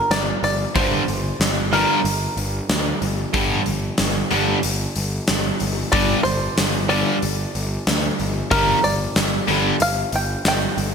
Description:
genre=hard rock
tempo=93 BPM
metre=4/4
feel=straight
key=G minor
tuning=A4 = 441 Hz
part: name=bluegrass banjo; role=melody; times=0.0-10.9 s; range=Bb4 to G5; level=-23 LUFS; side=equal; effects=none
part: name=fuzz picked electric bass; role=bass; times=0.1-10.9 s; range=G1 to D2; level=-24 LUFS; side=equal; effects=overdrive
part: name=huge arena drum kit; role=drums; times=0.1-10.9 s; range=hi-hat, kick drum, snare drum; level=-22 LUFS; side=equal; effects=gated reverb
part: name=cranked stack guitar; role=riff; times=0.7-9.7 s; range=G2 to G3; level=-27 LUFS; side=right 11 dB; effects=overdrive
part: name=cranked stack guitar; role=riff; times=0.8-9.7 s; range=G2 to G3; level=-26 LUFS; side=left 12 dB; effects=overdrive, analog chorus
room=moderate plate reverb, RT60 2.8 s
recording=bright 1980s-style digital production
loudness=-18 LUFS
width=side -6 dB against mid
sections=0.0-10.9 A section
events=none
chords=0.0 G5

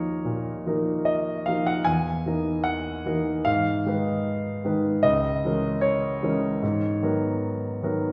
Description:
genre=classical, impressionist solo piano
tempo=76 BPM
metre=4/4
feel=rubato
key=G# minor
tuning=A4 = 440 Hz
part: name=warm concert grand piano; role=solo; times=0.0-8.1 s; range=C#2 to G#5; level=-25 LUFS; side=equal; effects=none
room=wet recital hall reverb, RT60 1.6 s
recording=heard from further back in the room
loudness=-25 LUFS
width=mono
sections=0.0-8.1 A section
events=none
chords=0.0 D#sus2; 1.9 Emaj7#11; 3.5 G#m6; 5.0 C#m6; 6.6 G#m9

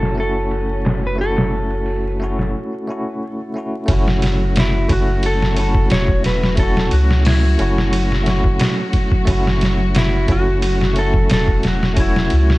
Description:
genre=trip hop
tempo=89 BPM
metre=4/4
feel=swing 54% on 16ths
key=unclear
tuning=A4 = 441 Hz
part: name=mellow electric guitar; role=melody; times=0.0-12.6 s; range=E4 to C#5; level=-23 LUFS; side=equal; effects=tape echo
part: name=bell-like tine electric piano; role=accompaniment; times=0.0-12.6 s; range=A3 to F#4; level=-24 LUFS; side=equal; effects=tremolo, tape echo
part: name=muted symphonic string section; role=sustained chords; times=0.0-12.6 s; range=F#3 to F#4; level=-28 LUFS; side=left 1 dB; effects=none
part: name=celesta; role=arpeggios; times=0.0-12.6 s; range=F#4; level=-29 LUFS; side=right 3 dB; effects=tape echo
part: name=soft dub sub bass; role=bass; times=0.0-12.6 s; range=E1 to C#2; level=-18 LUFS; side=equal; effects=none
part: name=trip hop sampler-style drum kit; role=drums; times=0.0-12.6 s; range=hi-hat, kick drum, ride cymbal, snare drum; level=-18 LUFS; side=equal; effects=low-pass filter on cymbals, low-pass filter on snare, low-pass filter on hats, low-pass filter on kick, low-pass filter on room
room=little or no reverb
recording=dark, warm production, vinyl crackle, low-pass filter, nothing above 10.9 kHz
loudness=-15 LUFS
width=side -19 dB against mid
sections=0.0-3.9 A section; 3.9-12.6 B section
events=filter sweep on celesta 0.0-3.9; break 2.5-3.9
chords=0.0 F#m7

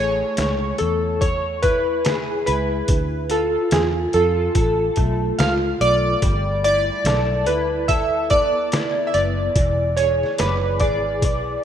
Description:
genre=indie pop, bedroom pop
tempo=72 BPM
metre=4/4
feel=swing 60% on 16ths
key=A major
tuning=A4 = 440 Hz
part: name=chorused retro synth keys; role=melody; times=0.0-11.6 s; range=G#4 to F5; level=-20 LUFS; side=right 1 dB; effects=tremolo, lush chorus
part: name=electric guitar through a small old amp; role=accompaniment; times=0.0-11.6 s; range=E3 to D5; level=-26 LUFS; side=left 2 dB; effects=ensemble chorus, vibrato effect
part: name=vintage muted fingered electric bass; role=bass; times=0.0-11.6 s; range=E1 to F2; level=-24 LUFS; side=equal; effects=none
part: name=trip hop sampler-style drum kit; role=drums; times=0.4-11.5 s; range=hi-hat, kick drum, snare drum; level=-24 LUFS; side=equal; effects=none
room=moderate lush hall reverb, RT60 2.6 s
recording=rough home demo mix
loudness=-17 LUFS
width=side -9 dB against mid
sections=0.0-11.6 A section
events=none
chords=0.0 Amaj9; 2.9 Dmadd9; 6.2 G69; 9.6 E9

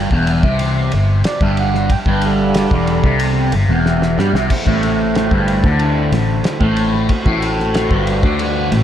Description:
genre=psychedelic rock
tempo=92 BPM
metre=4/4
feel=straight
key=A dorian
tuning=A4 = 440 Hz
part: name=fuzz guitar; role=riff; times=0.0-8.8 s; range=E2 to G3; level=-16 LUFS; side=left 1 dB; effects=distortion, phaser, tape echo
part: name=fingered electric bass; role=bass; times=0.0-8.8 s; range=E1 to G2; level=-19 LUFS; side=equal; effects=none
part: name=cloth-damped thuddy drum kit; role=drums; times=0.1-8.8 s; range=crash cymbal, kick drum, ride cymbal, snare drum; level=-20 LUFS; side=equal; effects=tape echo
part: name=hand-pumped harmonium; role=sustained chords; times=1.3-8.8 s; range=D3 to G5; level=-23 LUFS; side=right 5 dB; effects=none
room=light reverb, small room ambience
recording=echo-heavy mix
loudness=-13 LUFS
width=side -10 dB against mid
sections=0.0-4.5 A section; 4.5-8.8 B section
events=harmonium solo 0.0-4.5; drum fill 3.9-4.5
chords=0.0 G5; 4.5 Am

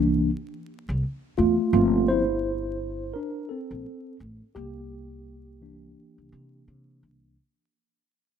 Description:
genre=hip hop, jazz-hop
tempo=85 BPM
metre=4/4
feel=swing 60% on 16ths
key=unclear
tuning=A4 = 441 Hz
part: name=mellow tine electric piano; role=accompaniment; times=0.0-7.3 s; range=E3 to C5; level=-24 LUFS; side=equal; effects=medium stereo tremolo
part: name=upright bass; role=bass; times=0.0-7.3 s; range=G1 to C3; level=-30 LUFS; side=equal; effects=none
room=light reverb, small room ambience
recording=rough home demo mix, vinyl crackle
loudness=-23 LUFS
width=side -8 dB against mid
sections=0.0-7.4 A section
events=fade-out 0.0-7.4; tine electric piano solo 0.0-7.4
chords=0.0 C9; 1.7 Gm11; 4.6 C9

